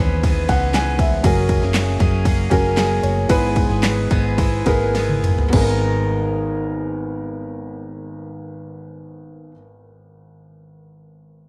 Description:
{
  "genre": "piano-driven pop",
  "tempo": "101-119 BPM",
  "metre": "4/4",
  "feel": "straight",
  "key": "G# minor",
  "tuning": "A4 = 440 Hz",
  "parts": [
    { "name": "dark upright piano", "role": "accompaniment", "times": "0.0-11.5 s", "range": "G#1 to G#5", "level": "-25 LUFS", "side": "equal", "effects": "none" },
    { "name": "picked steel-string acoustic guitar", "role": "riff", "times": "0.0-9.7 s", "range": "G#2 to A#4", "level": "-28 LUFS", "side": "equal", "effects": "none" },
    { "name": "vintage muted fingered electric bass", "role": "bass", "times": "0.0-9.5 s", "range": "F#1 to D#2", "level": "-24 LUFS", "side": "equal", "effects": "none" },
    { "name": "pop drum kit", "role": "drums", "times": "0.2-5.7 s", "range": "crash cymbal, handclaps, kick drum, ride cymbal, snare drum, toms", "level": "-22 LUFS", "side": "equal", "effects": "overdrive" }
  ],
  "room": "light reverb, digital ambience",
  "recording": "none",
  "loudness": "-18 LUFS",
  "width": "mono",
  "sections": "0.0-5.5 A section; 5.5-10.3 B section",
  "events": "slowing down 1.2-5.5; drum fill 5.0-5.5",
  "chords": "0.0 C#m7; 1.2 F#add9; 3.3 E/G#; 5.5 G#madd9",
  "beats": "0.24 0.74 | 1.25 1.75 2.26 2.77 | 3.30 3.84 4.38 4.95 | 5.53 6.13 6.72 7.31 | 7.90 8.50 9.09 9.68"
}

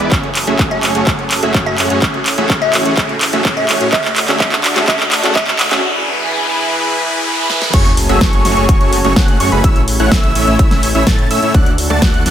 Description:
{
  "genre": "EDM, festival progressive house",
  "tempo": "126 BPM",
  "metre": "4/4",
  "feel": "straight",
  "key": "F# minor",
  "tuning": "A4 = 439 Hz",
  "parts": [
    { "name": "lush unison pad", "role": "sustained chords", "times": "0.0-12.3 s", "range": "D3 to B4", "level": "-21 LUFS", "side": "equal", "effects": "chorus, vintage 12-bit sampler grit, sidechain pumping" },
    { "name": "dense compressed supersaw", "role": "riff", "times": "0.0-12.3 s", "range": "A3 to A5", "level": "-18 LUFS", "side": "right 1 dB", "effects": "sidechain pumping, low-pass filter, dub echo" },
    { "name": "wide detuned saw bass", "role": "bass", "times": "0.0-12.3 s", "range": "F#1 to A2", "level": "-21 LUFS", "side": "equal", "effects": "chorus, sidechain pumping" },
    { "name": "big-room dance drum kit", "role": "drums", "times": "0.0-12.3 s", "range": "crash cymbal, handclaps, hi-hat, snare drum", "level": "-17 LUFS", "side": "equal", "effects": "none" },
    { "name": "riser and sub drop", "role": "sound effects", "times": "0.2-9.6 s", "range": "none", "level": "-21 LUFS", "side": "equal", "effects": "none" },
    { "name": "electronic kick drum", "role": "drums", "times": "0.1-12.1 s", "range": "none", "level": "-14 LUFS", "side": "equal", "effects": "none" },
    { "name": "glassy wavetable pluck", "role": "melody", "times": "0.7-5.5 s", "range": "E5", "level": "-21 LUFS", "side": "equal", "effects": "chorus, dub echo" },
    { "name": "wide unison lead", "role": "arpeggios", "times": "7.7-12.3 s", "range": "B5 to A6", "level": "-19 LUFS", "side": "equal", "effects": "sidechain pumping, dub echo" }
  ],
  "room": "moderate lush hall reverb, RT60 1.7 s",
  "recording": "high-pass filter",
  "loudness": "-11 LUFS",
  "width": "side -10 dB against mid",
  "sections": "0.0-7.7 A section; 7.7-12.3 B section",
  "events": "build-up 0.0-7.7; drum fill 0.0-5.8, 7.5; filter sweep on analog synth pad 0.0-7.7; riser 0.2-7.7; break 5.8-7.7; drop 7.7-12.3; impact 7.7-9.6",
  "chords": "0.1 F#madd9; 2.0 A; 3.9 D; 5.8 E; 7.7 F#madd9; 9.6 A; 11.5 D",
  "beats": "| 0.12 0.59 1.07 1.54 | 2.02 2.50 2.97 3.45 | 3.93 4.40 4.88 5.36 | 5.83 6.31 6.78 7.26 | 7.74 8.21 8.69 9.16 | 9.64 10.12 10.59 11.07 | 11.54 12.02"
}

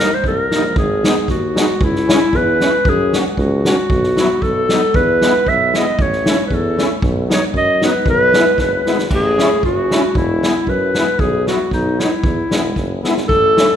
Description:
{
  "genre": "alpine folk, alpine dance band",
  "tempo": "115 BPM",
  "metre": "2/4",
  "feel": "swing 53% on 8ths",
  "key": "E major",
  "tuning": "A4 = 442 Hz",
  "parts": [
    { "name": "warm clarinet", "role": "melody", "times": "0.0-13.8 s", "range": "D#4 to E5", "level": "-16 LUFS", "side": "equal", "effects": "none" },
    { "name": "musette accordion", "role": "accompaniment", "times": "0.0-13.7 s", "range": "F#3 to F#4", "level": "-21 LUFS", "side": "left 1 dB", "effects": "none" },
    { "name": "clear tuba", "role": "bass", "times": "0.0-13.6 s", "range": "E1 to F#2", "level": "-21 LUFS", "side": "equal", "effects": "none" },
    { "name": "unplugged drum kit", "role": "drums", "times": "0.2-13.7 s", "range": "crash cymbal, kick drum, snare drum", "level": "-19 LUFS", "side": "equal", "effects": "none" }
  ],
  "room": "moderate concert hall reverb, RT60 2.2 s",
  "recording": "minimal, uncompressed stereo recording",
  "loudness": "-13 LUFS",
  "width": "side -9 dB against mid",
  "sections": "0.0-13.3 A section",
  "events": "drum fill 8.6-9.1, 12.8-13.3",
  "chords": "0.0 D#; 0.8 G#m; 1.8 C#m7; 2.9 F#; 3.9 Bsus4; 4.4 B; 4.9 E; 6.0 A; 7.0 B; 8.1 E/B; 9.1 A; 10.2 Eadd9; 11.2 Bsus4; 11.7 B; 12.2 E",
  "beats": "0.23 | 0.76 1.28 | 1.80 2.33 | 2.85 3.37 | 3.89 4.42 | 4.94 5.46 | 5.99 6.51 | 7.03 7.54 | 8.06 8.59 | 9.11 9.64 | 10.16 10.68 | 11.19 11.71 | 12.23 12.76 | 13.28"
}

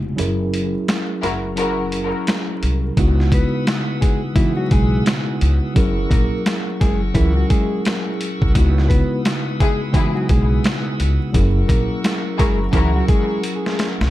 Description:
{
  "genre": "hip hop, boom-bap hip-hop",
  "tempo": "86 BPM",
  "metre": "4/4",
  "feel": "swing 62% on 16ths",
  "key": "C# dorian",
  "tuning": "A4 = 440 Hz",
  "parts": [
    { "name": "mellow tine electric piano", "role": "accompaniment", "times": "0.0-14.1 s", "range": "C#3 to A#4", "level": "-22 LUFS", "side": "equal", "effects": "medium stereo tremolo, cassette tape, high-pass filter, low-pass filter, analog delay" },
    { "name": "upright bass", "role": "bass", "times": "0.0-14.1 s", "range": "E#1 to C#2", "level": "-19 LUFS", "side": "equal", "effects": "none" },
    { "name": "boom bap sampler-style drum kit", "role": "drums", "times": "0.2-14.1 s", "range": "hi-hat, kick drum, snare drum", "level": "-19 LUFS", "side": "equal", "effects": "none" },
    { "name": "warm studio string section", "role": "stabs", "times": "1.2-1.9, 9.6-13.0 s", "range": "G#3 to A#4", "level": "-26 LUFS", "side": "left 3 dB", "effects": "high-pass filter, low-pass filter, analog delay" },
    { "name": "bright tonewheel organ", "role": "sustained chords", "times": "3.0-14.1 s", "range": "A#4 to E6", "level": "-33 LUFS", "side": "equal", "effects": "slow rotary speaker, high-pass filter, low-pass filter" },
    { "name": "mellow electric guitar", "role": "melody", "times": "3.3-13.4 s", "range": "E3 to B4", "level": "-25 LUFS", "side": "left 1 dB", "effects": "vibrato effect, high-pass filter, low-pass filter, analog delay" }
  ],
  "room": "digital ambience",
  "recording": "echo-heavy mix, vinyl crackle",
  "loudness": "-16 LUFS",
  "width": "side -15 dB against mid",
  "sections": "0.0-3.0 A section; 3.0-14.1 B section",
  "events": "kick muted 0.2-3.0; drum fill 13.4-14.1",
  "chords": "0.2 F#7; 3.0 C#m11; 5.8 F#7; 8.6 C#m11; 11.3 F#7",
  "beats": "| 0.18 0.88 1.57 2.27 | 2.97 3.67 4.36 5.06 | 5.76 6.46 7.16 7.85 | 8.55 9.25 9.95 10.64 | 11.34 12.04 12.74 13.43"
}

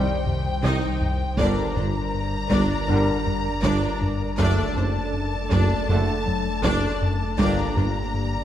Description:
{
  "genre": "cinematic, hybrid orchestral and electronic film score",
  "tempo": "80 BPM",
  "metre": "4/4",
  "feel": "straight",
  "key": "G harmonic minor",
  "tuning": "A4 = 440 Hz",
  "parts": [
    { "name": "warm symphonic violin section", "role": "melody", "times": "0.0-8.4 s", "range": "G5 to Bb5", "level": "-31 LUFS", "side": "left 3 dB", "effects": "none" },
    { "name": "airy breathy pad", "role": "sustained chords", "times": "0.0-8.4 s", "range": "Eb3 to D5", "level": "-31 LUFS", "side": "equal", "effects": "chorus" },
    { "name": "mellow trombone section", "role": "sustained chords", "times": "0.0-7.7 s", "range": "D3 to Bb3", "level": "-31 LUFS", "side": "right 2 dB", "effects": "none" },
    { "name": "warm French horn section", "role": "sustained chords", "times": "0.0-7.7 s", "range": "D4 to D5", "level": "-32 LUFS", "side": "left 4 dB", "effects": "none" },
    { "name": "round analog bass", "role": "riff", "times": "0.0-8.4 s", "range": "C2 to G3", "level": "-29 LUFS", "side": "left 2 dB", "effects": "none" },
    { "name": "mellow tuba", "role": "bass", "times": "0.0-7.9 s", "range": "F#1 to C2", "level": "-31 LUFS", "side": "right 2 dB", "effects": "none" },
    { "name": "saturated sub bass", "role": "bass", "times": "0.0-8.4 s", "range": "F#1 to C2", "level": "-31 LUFS", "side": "equal", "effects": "none" },
    { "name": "solo taiko drums", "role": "drums", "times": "0.3-8.1 s", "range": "none", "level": "-30 LUFS", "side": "equal", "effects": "none" },
    { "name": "warm symphonic violin section", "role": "second line", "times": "0.6-7.8 s", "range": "C5 to Eb5", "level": "-33 LUFS", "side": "left 3 dB", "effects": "none" },
    { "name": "warm symphonic viola section", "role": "accompaniment", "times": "0.6-7.8 s", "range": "D4 to Eb4", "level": "-31 LUFS", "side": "right 1 dB", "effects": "none" },
    { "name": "dark studio double bass section", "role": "bass", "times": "0.6-7.8 s", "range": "F#1 to C2", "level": "-30 LUFS", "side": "right 2 dB", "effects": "none" },
    { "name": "warm symphonic cello section", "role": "bass", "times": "0.6-7.8 s", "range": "F#2 to C3", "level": "-28 LUFS", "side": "right 1 dB", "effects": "none" }
  ],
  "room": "moderate scoring stage reverb, RT60 1.7 s",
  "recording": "none",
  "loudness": "-20 LUFS",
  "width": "side -11 dB against mid",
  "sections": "0.0-8.4 A section",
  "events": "none",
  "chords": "0.0 Cm; 1.4 Gm; 4.4 D/F#; 7.4 Gm",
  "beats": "0.64 | 1.39 2.14 2.89 3.64 | 4.39 5.14 5.89 6.64 | 7.39 8.14"
}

